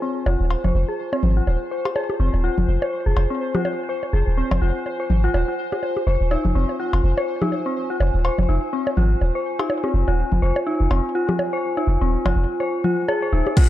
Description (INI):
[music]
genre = minimal techno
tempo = 124 BPM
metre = 4/4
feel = swing 57% on 16ths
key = F minor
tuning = A4 = 441 Hz
[part]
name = dark detuned synth bell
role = riff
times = 0.0-13.6 s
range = C4 to C5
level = -25 LUFS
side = left 2 dB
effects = chorus, sidechain pumping, low-pass filter, tape echo
[part]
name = pulsing gated texture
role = texture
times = 0.0-13.6 s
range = C5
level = -33 LUFS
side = right 1 dB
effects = chorus, built-in reverb, sidechain pumping
[part]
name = warbly tape-like pad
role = texture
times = 0.0-13.7 s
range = F4 to Ab5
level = -29 LUFS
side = right 1 dB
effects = chorus, built-in reverb, sidechain pumping
[part]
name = punchy sub bass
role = bass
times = 0.3-13.4 s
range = Eb1 to Ab1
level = -19 LUFS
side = equal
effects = tube saturation, sidechain pumping
[part]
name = bongos, cowbell and congas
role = percussion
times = 0.3-13.7 s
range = none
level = -26 LUFS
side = left 2 dB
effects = tape echo
[part]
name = electronic crash cymbal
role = drums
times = 13.6-13.7 s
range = none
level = -28 LUFS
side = left 6 dB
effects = none
[part]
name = electronic kick drum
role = drums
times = 13.6-13.7 s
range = none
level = -12 LUFS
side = equal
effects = none
[sound]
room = light reverb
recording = none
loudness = -19 LUFS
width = side -14 dB against mid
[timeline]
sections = 0.0-13.6 A section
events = none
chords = 0.0 Fm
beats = | 0.02 0.50 0.99 1.47 | 1.96 2.44 2.92 3.41 | 3.89 4.38 4.86 5.34 | 5.83 6.31 6.79 7.28 | 7.76 8.25 8.73 9.21 | 9.70 10.18 10.66 11.15 | 11.63 12.12 12.60 13.09 | 13.57